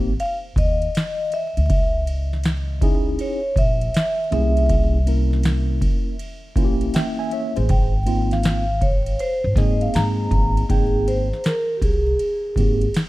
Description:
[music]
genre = hip hop, jazz-hop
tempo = 80 BPM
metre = 4/4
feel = swing 65% on 16ths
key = Ab major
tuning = A4 = 436 Hz
[part]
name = mellow tine electric piano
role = accompaniment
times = 0.0-12.9 s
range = Bb3 to Ab5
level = -26 LUFS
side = equal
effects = medium stereo tremolo
[part]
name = upright bass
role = bass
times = 0.0-12.9 s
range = Ab1 to Ab2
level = -21 LUFS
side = equal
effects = none
[part]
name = vibraphone with soft mallets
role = melody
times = 0.2-12.9 s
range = G4 to Bb5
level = -24 LUFS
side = equal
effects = tape echo
[part]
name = booming analog drum machine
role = drums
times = 0.2-13.1 s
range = hi-hat, kick drum, ride cymbal, snare drum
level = -22 LUFS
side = equal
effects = none
[sound]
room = little or no reverb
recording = vinyl crackle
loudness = -18 LUFS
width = side -18 dB against mid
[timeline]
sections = 0.0-10.7 A section; 10.7-13.1 B section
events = vibraphone solo 0.0-10.7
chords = 0.0 Ab5; 1.7 Dbmadd9; 4.3 C7b9b13; 7.7 Ab69; 10.7 Abmaj7

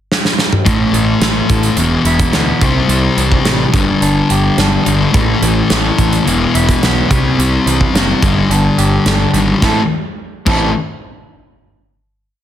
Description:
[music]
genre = quiet-loud alternative rock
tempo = 107 BPM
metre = 4/4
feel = straight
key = A minor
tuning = A4 = 437 Hz
[part]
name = big rock drum kit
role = drums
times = 0.1-10.6 s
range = crash cymbal, hi-hat, kick drum, snare drum, toms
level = -16 LUFS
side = right 1 dB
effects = soft clipping on kick
[part]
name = electric guitar through a small old amp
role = arpeggios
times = 0.7-10.7 s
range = E2 to A4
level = -20 LUFS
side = right 4 dB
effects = none
[part]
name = thick fuzz guitar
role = riff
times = 0.7-10.7 s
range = E2 to C4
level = -14 LUFS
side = left 4 dB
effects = distortion
[part]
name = fuzz picked electric bass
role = bass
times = 0.7-10.7 s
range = E1 to D2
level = -17 LUFS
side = right 1 dB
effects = overdrive
[sound]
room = small room ambience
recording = dense, heavily limited modern master, faint mains hum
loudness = -10 LUFS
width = side -11 dB against mid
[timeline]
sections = 0.0-0.7 pickup bar; 0.7-9.6 verse; 9.6-11.9 final chord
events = drum fill 0.1-0.7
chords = 0.0 N.C.; 0.7 A5; 1.8 E5; 2.6 C; 3.7 G5; 5.1 A5; 6.3 E5; 7.1 C; 8.2 G5; 9.6 Am

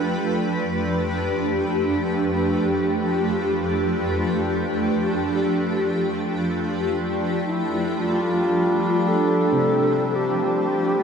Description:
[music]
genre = ambient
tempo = free time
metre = none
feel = none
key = G mixolydian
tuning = A4 = 438 Hz
[part]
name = granular cloud pad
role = sustained chords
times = 0.0-11.0 s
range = F2 to C5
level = -21 LUFS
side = equal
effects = built-in reverb, lush chorus
[part]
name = mellow reedy alto flute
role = melody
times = 7.4-11.0 s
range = E4 to A4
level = -22 LUFS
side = left 1 dB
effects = ping-pong delay
[part]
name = hand-pumped harmonium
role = drone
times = 8.0-11.0 s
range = G3 to D4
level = -26 LUFS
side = left 1 dB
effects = none
[part]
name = felt-muted upright piano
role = arpeggios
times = 9.5-11.0 s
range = C3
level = -29 LUFS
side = equal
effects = wide subtle chorus, ping-pong delay
[sound]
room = wet lush hall reverb, RT60 2.9 s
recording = dreamy mix soaked in reverb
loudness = -20 LUFS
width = side -6 dB against mid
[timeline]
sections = 0.0-8.0 A section; 8.0-11.0 B section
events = none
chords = 0.0 G9/F; 8.0 G7sus4

